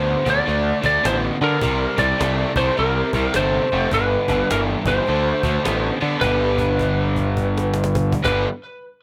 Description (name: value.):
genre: blues rock power trio and southern rock.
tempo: 104 BPM.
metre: 4/4.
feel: swing 64% on 8ths.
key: G major.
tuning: A4 = 440 Hz.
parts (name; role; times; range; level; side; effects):
lightly driven lead guitar; melody; 0.0-8.5 s; Bb4 to D5; -24 LUFS; equal; none.
crunchy overdriven guitar; riff; 0.0-8.5 s; G2 to B3; -26 LUFS; equal; none.
fuzz picked electric bass; bass; 0.0-8.4 s; F1 to D3; -25 LUFS; equal; overdrive.
cajon; drums; 0.3-8.4 s; none; -30 LUFS; equal; none.
room: light reverb.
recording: none.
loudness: -20 LUFS.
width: mono.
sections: 0.0-6.2 A section; 6.2-8.5 B section.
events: held note 6.2-8.2.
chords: 0.0 D5; 1.6 C5; 3.9 G; 5.1 D5; 6.2 G.